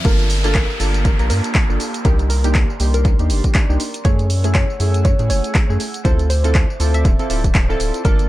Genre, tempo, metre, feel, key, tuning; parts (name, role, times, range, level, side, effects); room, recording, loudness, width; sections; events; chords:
deep house; 120 BPM; 4/4; swing 57% on 16ths; A4 = 440 Hz
warbly tape-like pad; sustained chords; 0.0-8.3 s; A3 to E6; -32 LUFS; right 2 dB; chorus, built-in reverb, vintage 12-bit sampler grit, sidechain pumping
warm analog keys; stabs; 0.0-8.3 s; A3 to Bb4; -25 LUFS; right 1 dB; chorus, sidechain pumping, tape echo
punchy analog drum machine; drums; 0.0-8.3 s; handclaps, hi-hat, tambourine; -25 LUFS; equal; analog delay
riser and downlifter; sound effects; 0.0-4.0 s; -28 LUFS; equal
soft round pluck; melody; 0.1-8.3 s; Bb4 to E5; -28 LUFS; equal; chorus, tape echo
round analog bass; bass; 0.1-8.3 s; D1 to A2; -18 LUFS; equal; sidechain pumping
electronic kick drum; drums; 0.1-8.2 s; -16 LUFS; equal
little or no reverb; echo-heavy mix; -14 LUFS; side -16 dB against mid
0.0-8.3 A section
drop 0.0-8.3
0.0 Gm9; 2.0 Cm9; 4.0 F#m9; 6.0 Dm9